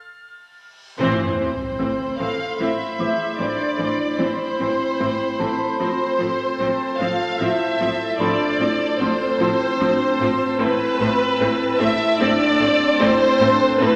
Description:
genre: cinematic, suspense film score.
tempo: 75 BPM.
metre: 3/4.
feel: straight.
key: A minor.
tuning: A4 = 445 Hz.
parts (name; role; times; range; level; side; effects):
reverse cymbal and sub drop; sound effects; 0.8-3.4 s; none; -35 LUFS; equal; none.
rich symphonic violin section; texture; 0.0-0.6, 5.8-14.0 s; A5 to A6; -36 LUFS; equal; none.
rich studio violin section; melody; 1.0-14.0 s; B4 to F5; -25 LUFS; equal; none.
rich symphonic violin section; second line; 1.0-14.0 s; B4 to F5; -29 LUFS; equal; none.
rich symphonic viola section; accompaniment; 1.0-13.9 s; E3 to C4; -27 LUFS; equal; none.
dark French horn section; sustained chords; 1.0-14.0 s; C4 to B4; -29 LUFS; equal; none.
drifting glass-harmonics texture; sustained chords; 1.5-14.0 s; C4 to B5; -32 LUFS; equal; chorus, built-in reverb.
clear symphonic cello section; bass; 1.0-13.9 s; A2; -32 LUFS; equal; none.
rich symphonic double bass section; bass; 1.0-13.9 s; A1; -39 LUFS; equal; none.
mellow clarinet; second line; 1.8-14.0 s; C4 to C5; -32 LUFS; equal; none.
small celesta; texture; 1.8-14.0 s; D4 to E6; -33 LUFS; equal; none.
room: wet scoring stage reverb, RT60 1.5 s.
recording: none.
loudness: -20 LUFS.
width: mono.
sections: 1.0-14.0 A section.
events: break 0.0-1.0; reverse cymbal 0.8; band accent 1.0-1.8; impact 1.0-3.4.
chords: 0.0 F; 1.0 Amadd9; 5.8 F/A; 10.6 Amadd9.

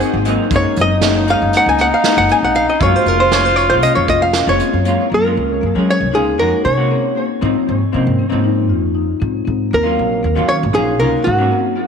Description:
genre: progressive instrumental, band music in an uneven meter.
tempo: 234 BPM (eighths).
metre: 9/8.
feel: straight.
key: Gb lydian.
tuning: A4 = 440 Hz.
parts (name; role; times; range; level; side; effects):
warm flugelhorn; second line; 0.0-4.9 s; Eb4 to Ab4; -19 LUFS; equal; none.
vintage hollow-body jazz guitar; accompaniment; 0.0-11.9 s; F3 to Ab4; -20 LUFS; right 1 dB; double-tracked left and right.
marimba with soft mallets; arpeggios; 0.0-11.9 s; Bb3 to Gb4; -21 LUFS; left 11 dB; tape echo.
soft brush drum kit; drums; 0.0-5.0 s; hi-hat, kick drum, snare drum; -22 LUFS; right 5 dB; none.
upright bass; bass; 0.1-11.5 s; F1 to Gb3; -19 LUFS; equal; none.
archtop guitar, miked and amplified; melody; 0.6-11.8 s; Gb4 to Ab5; -16 LUFS; right 1 dB; tape echo.
room: moderate echo chamber reverb, RT60 2.2 s.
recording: 1960s-style stereo.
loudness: -12 LUFS.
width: side -6 dB against mid.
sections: 0.0-5.1 A section; 5.1-11.9 B section.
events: hollow-body jazz guitar solo 0.0-5.1.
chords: 0.0 Ab7; 0.5 Gb6; 2.8 Gbmaj7; 7.4 Ab6; 9.7 Ebm7.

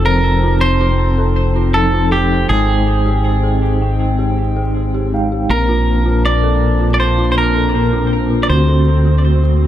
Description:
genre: trip hop.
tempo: 80 BPM.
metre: 4/4.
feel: straight.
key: unclear.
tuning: A4 = 441 Hz.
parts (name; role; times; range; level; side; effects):
semi-hollow electric guitar; melody; 0.0-9.7 s; G4 to D5; -19 LUFS; equal; tape echo.
mellow tine electric piano; accompaniment; 0.0-9.7 s; Bb2 to G5; -19 LUFS; equal; medium stereo tremolo, tape echo.
warbly tape-like pad; sustained chords; 0.3-9.7 s; D3 to A5; -24 LUFS; left 1 dB; chorus, built-in reverb, vintage 12-bit sampler grit.
dark detuned synth bell; arpeggios; 0.0-9.7 s; F4 to G5; -25 LUFS; left 1 dB; chorus, low-pass filter, ping-pong delay.
deep dub fingered electric bass; bass; 0.0-9.7 s; F1 to D2; -15 LUFS; equal; none.
bowed-like drone; texture; 0.0-9.7 s; C4; -26 LUFS; right 1 dB; built-in reverb.
room: light reverb.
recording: vinyl crackle, faint mains hum.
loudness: -12 LUFS.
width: side -12 dB against mid.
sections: 0.0-9.7 A section.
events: none.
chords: 0.0 F7; 2.5 Abmaj7; 5.5 Bbmaj7; 8.5 D7.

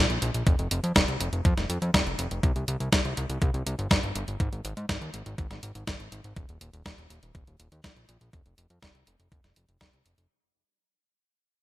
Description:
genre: italo disco.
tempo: 122 BPM.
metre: 4/4.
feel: straight.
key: unclear.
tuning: A4 = 443 Hz.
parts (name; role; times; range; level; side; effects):
fat analog bass; bass; 0.0-10.3 s; Eb1 to Ab2; -31 LUFS; equal; tube saturation.
clean 12-bit digital drum machine; drums; 0.1-10.3 s; hi-hat, snare drum; -27 LUFS; equal; gated reverb.
electronic kick drum; drums; 0.5-9.9 s; none; -26 LUFS; equal; none.
room: light reverb.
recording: bright 1980s-style digital production.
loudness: -25 LUFS.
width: side -16 dB against mid.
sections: 0.0-10.3 A section.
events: fade-out 0.0-10.3.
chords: none.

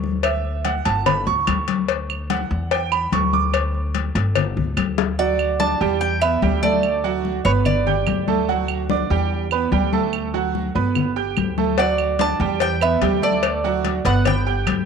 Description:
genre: latin, Cuban son and guajira.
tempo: 146 BPM.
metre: 4/4.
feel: straight.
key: D major.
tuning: A4 = 442 Hz.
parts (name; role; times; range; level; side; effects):
upright bass; bass; 0.0-14.9 s; G1 to E2; -24 LUFS; left 1 dB; none.
congas; percussion; 0.0-14.9 s; none; -26 LUFS; left 11 dB; none.
bright grand piano; arpeggios; 0.2-14.8 s; F#3 to G6; -22 LUFS; right 10 dB; none.
claves; percussion; 0.2-14.9 s; none; -30 LUFS; right 11 dB; none.
cowbell and bongos; percussion; 0.2-5.2, 11.8-14.9 s; none; -25 LUFS; left 13 dB; none.
Cuban tres; melody; 5.2-8.2, 11.8-14.8 s; C#5 to A5; -22 LUFS; right 2 dB; tape echo.
room: moderate spring reverb, RT60 1.9 s.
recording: 1960s-style stereo with parts hard left and right.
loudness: -18 LUFS.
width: side -6 dB against mid.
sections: 0.0-5.2 A section; 5.2-14.9 B section.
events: grand piano solo 0.0-5.2; drum fill 5.0.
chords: 0.2 Em11; 1.1 G5; 1.9 G6/D; 3.5 G5; 5.2 D; 6.0 Em7; 6.8 D; 7.7 G; 8.5 D; 9.3 Em7; 10.1 D; 11.0 G; 11.8 D; 12.6 Em7; 13.4 D; 14.3 G.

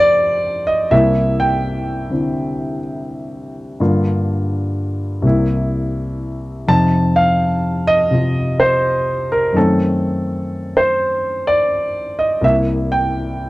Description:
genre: solo jazz.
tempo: 83 BPM.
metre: 4/4.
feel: swing 66% on 8ths.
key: unclear.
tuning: A4 = 440 Hz.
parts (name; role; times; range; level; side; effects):
warm concert grand piano; solo; 0.0-13.5 s; C2 to A5; -15 LUFS; equal; none.
room: moderate booth ambience, RT60 0.2 s.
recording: dry, close 1970s-style studio recording.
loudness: -15 LUFS.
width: side -19 dB against mid.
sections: 0.0-13.5 A section.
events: none.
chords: 0.0 F7; 0.9 C7; 3.8 Gm7; 5.2 C7; 6.7 F5; 9.6 F#dim7; 12.4 C7.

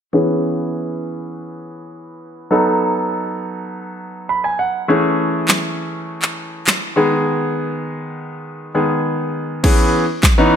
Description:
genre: dance-pop.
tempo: 101 BPM.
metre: 4/4.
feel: straight.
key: C# minor.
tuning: A4 = 439 Hz.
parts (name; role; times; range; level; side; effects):
clear concert grand piano; accompaniment; 0.1-10.6 s; D#3 to B5; -18 LUFS; equal; sidechain pumping, low-pass filter.
pop drum kit; drums; 5.5-10.4 s; crash cymbal, handclaps, kick drum, snare drum; -15 LUFS; equal; none.
room: light reverb, digital ambience.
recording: none.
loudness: -16 LUFS.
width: side -8 dB against mid.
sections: 0.1-9.6 A section.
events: filter sweep on grand piano 0.1-9.6; grand piano fill 4.0-4.9; break 7.3-9.6.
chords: 0.1 C#m7; 2.5 B7; 4.9 Amaj7; 7.0 G#m; 9.6 C#m7.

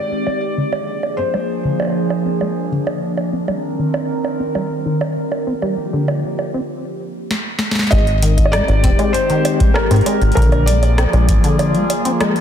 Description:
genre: IDM.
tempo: 98 BPM.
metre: 4/4.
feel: straight.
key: Ab lydian.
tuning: A4 = 439 Hz.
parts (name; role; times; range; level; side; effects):
felt-muted upright piano; melody; 0.0-2.7, 7.9-12.4 s; Bb4 to Eb5; -22 LUFS; left 1 dB; vintage 12-bit sampler grit, ping-pong delay.
warbly tape-like pad; sustained chords; 0.0-12.4 s; Eb3 to Bb4; -21 LUFS; equal; chorus, built-in reverb, phaser.
deep acid bass; arpeggios; 0.1-12.3 s; D3 to G4; -22 LUFS; left 1 dB; lush chorus, tape echo.
booming analog drum machine; drums; 0.3-12.4 s; bongos, hi-hat, rim click, snare drum; -23 LUFS; right 2 dB; none.
deep acid bass; bass; 7.9-11.4 s; Eb1 to Ab2; -14 LUFS; equal; none.
electronic kick drum; drums; 7.9-11.4 s; none; -17 LUFS; equal; none.
room: light reverb.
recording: dense, heavily limited modern master.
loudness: -15 LUFS.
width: side -9 dB against mid.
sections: 0.0-7.9 A section; 7.9-12.4 B section.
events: filter sweep on ambient pad 0.0-7.9; filter sweep on acid bass 0.0-7.9; drum fill 7.3-7.9.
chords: 0.0 Abmaj7; 0.6 Bb7; 3.0 Cm9; 5.5 Gm7; 7.9 Abmaj7; 10.4 Bb7.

